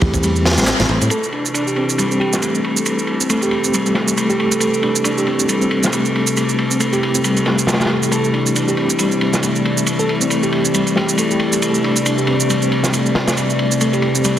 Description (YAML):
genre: breakbeat, breaks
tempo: 137 BPM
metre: 4/4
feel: swing 57% on 16ths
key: A minor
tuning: A4 = 440 Hz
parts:
  - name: mellow reed electric piano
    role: riff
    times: 0.0-14.4 s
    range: G3 to G4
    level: -18 LUFS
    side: left 1 dB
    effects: fast tremolo, overdrive, low-pass filter, dub echo
  - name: fingered electric bass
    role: bass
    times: 0.0-1.1 s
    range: A1 to A2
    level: -18 LUFS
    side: equal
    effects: none
  - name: crunchy breakbeat drum kit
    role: drums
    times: 0.0-14.4 s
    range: kick drum, ride cymbal, snare drum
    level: -21 LUFS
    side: equal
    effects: low-pass filter on kick, low-pass filter on cymbals, low-pass filter on snare, low-pass filter on room
  - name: electronic shaker and handclaps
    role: drums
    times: 0.1-14.3 s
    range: none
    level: -23 LUFS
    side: right 4 dB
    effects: overdrive
  - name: bell-like FM electric piano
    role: melody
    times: 1.1-2.5, 8.1-11.4 s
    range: G4 to A4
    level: -27 LUFS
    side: right 2 dB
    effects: chorus, AM radio sound, dub echo
  - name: warbly tape-like pad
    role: sustained chords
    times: 1.4-14.4 s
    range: C3 to D5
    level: -21 LUFS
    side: equal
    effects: chorus, built-in reverb, vintage 12-bit sampler grit, sidechain pumping
room: moderate lush hall reverb, RT60 1.7 s, small room ambience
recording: heavily compressed radio sound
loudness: -14 LUFS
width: side -10 dB against mid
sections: 0.0-1.1 A section; 1.1-14.4 B section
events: band accent 0.7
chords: 0.0 Am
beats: 0.23 0.67 | 1.11 1.55 1.99 2.42 | 2.86 3.30 3.74 4.18 | 4.62 5.05 5.49 5.93 | 6.37 6.80 7.24 7.68 | 8.12 8.56 8.99 9.43 | 9.87 10.31 10.75 11.18 | 11.62 12.06 12.50 12.94 | 13.37 13.81 14.25